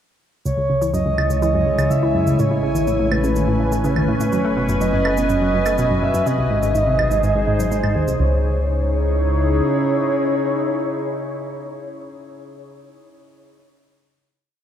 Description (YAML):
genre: ambient, sequencer-driven space music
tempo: 124 BPM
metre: 4/4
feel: straight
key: C# minor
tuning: A4 = 441 Hz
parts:
  - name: bubbling stepped-filter texture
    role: texture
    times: 0.4-8.2 s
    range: G#5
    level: -36 LUFS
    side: right 1 dB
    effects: chorus, built-in reverb
  - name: breathy flute-like synth lead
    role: melody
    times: 0.5-11.9 s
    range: B4 to E5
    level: -23 LUFS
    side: right 1 dB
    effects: wide subtle chorus, analog delay
  - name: evolving wavetable pad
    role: sustained chords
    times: 1.0-12.2 s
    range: A2 to C#5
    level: -22 LUFS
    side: equal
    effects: chorus, built-in reverb
  - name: analog pluck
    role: riff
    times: 0.5-8.4 s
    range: B#1 to A3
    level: -22 LUFS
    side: equal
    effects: chorus, analog delay
  - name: round analog bass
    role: bass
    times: 0.5-9.6 s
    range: F#1 to C#2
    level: -23 LUFS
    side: equal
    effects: none
  - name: cabasa and claves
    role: percussion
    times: 0.5-8.2 s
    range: none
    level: -31 LUFS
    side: right 3 dB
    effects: overdrive, analog delay
room: wet cathedral reverb, RT60 4.9 s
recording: in a vast, echoing space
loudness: -16 LUFS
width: side -9 dB against mid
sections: 0.5-8.2 A section; 8.2-12.1 final chord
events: fade-in on synth texture 0.5-8.2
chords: 0.5 C#madd9; 2.4 Aadd9; 4.3 F#sus4; 6.3 G#; 8.2 C#madd9